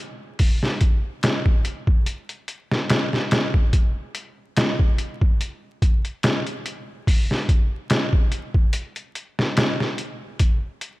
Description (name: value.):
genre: trip hop.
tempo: 72 BPM.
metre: 4/4.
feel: swing 54% on 16ths.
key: none.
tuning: none.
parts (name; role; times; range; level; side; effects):
trip hop sampler-style drum kit; drums; 0.4-11.0 s; hi-hat, kick drum, snare drum; -19 LUFS; equal; none.
room: light reverb, digital ambience.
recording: vinyl crackle.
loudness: -19 LUFS.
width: side -19 dB against mid.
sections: 0.0-11.0 A section.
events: none.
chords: none.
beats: | 0.40 1.24 2.07 2.90 | 3.74 4.57 5.40 6.24 | 7.07 7.90 8.74 9.57 | 10.40.